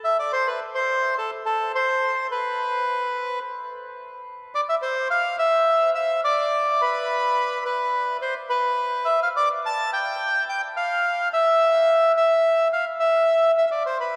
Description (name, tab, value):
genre	tango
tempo	107 BPM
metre	4/4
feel	rubato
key	unclear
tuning	A4 = 440 Hz
part	bandoneon	solo	0.0-14.2 s	A4 to A5	-22 LUFS	equal	none
room	wet cathedral reverb, RT60 7.3 s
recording	recorded in a church or concert hall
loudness	-22 LUFS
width	mono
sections	0.3-14.2 A section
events	none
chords	none